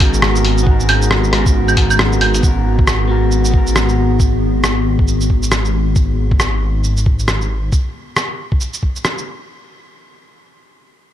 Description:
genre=future garage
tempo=136 BPM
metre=4/4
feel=swing 60% on 16ths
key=G# minor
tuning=A4 = 440 Hz
part: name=electric guitar through a small old amp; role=accompaniment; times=0.0-4.2 s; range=B3 to A#4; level=-22 LUFS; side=right 3 dB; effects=sidechain pumping, tape echo
part: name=warbly tape-like pad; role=sustained chords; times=0.0-6.0 s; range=D#3 to G#4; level=-21 LUFS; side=left 3 dB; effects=chorus, built-in reverb, sidechain pumping
part: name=dark detuned saw bass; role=bass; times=0.0-7.7 s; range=G#1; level=-16 LUFS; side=equal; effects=sidechain pumping
part: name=electronic kick drum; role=drums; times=0.0-8.9 s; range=none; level=-14 LUFS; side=equal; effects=none
part: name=lo-fi sampler-style drum kit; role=drums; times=0.0-9.2 s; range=claves, hi-hat, rim click, shaker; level=-18 LUFS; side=right 1 dB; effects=none
room=little or no reverb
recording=none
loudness=-12 LUFS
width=side -11 dB against mid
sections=0.0-2.4 A section; 2.4-9.5 B section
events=none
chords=0.0 G#m7

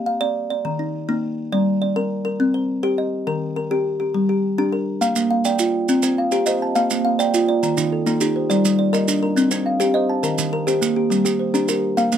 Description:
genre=southern african traditional, mbira-style interlocking cycle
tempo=138 BPM (dotted quarters)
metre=12/8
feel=straight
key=unclear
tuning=A4 = 439 Hz
part: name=kalimba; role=arpeggios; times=0.0-12.2 s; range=Eb3 to F5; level=-19 LUFS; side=left 1 dB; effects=none
part: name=maracas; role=percussion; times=5.0-12.2 s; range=none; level=-27 LUFS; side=right 8 dB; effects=none
part: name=kalimba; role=arpeggios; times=5.2-12.2 s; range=Eb3 to A5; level=-21 LUFS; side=right 3 dB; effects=none
room=light reverb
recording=none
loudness=-18 LUFS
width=side -9 dB against mid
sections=0.0-5.0 A section; 5.0-12.2 A section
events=none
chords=0.0 Bb (rootless); 0.6 Eb5; 1.5 Gm; 2.4 Cm; 3.3 Eb; 4.1 Gm; 5.0 Bb; 5.9 Cm; 6.8 Bb; 7.6 Eb; 8.5 Gm; 9.4 Cm; 10.2 Eb; 11.1 Gm

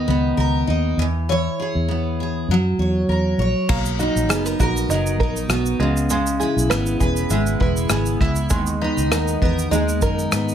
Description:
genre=acoustic pop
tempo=100 BPM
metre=4/4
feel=swing 55% on 16ths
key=B major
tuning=A4 = 440 Hz
part: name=picked steel-string acoustic guitar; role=accompaniment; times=0.0-10.5 s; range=C#3 to C#5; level=-21 LUFS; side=equal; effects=double-tracked left and right, plate reverb
part: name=vintage muted fingered electric bass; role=bass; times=0.0-10.5 s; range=E1 to G#2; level=-22 LUFS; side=equal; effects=none
part: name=open-back banjo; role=arpeggios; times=3.7-10.5 s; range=G#3 to B4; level=-26 LUFS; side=right 4 dB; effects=plate reverb
part: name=unplugged drum kit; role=drums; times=3.7-10.5 s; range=crash cymbal, kick drum, rim click, shaker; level=-23 LUFS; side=equal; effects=none
room=moderate studio reverb, RT60 0.6 s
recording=none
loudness=-18 LUFS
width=side -9 dB against mid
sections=0.0-3.7 A section; 3.7-10.5 B section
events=none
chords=0.0 Bmaj9/C#; 1.0 E6; 2.5 F#7; 3.7 Bmaj7; 5.8 C#m7; 8.5 G#madd9

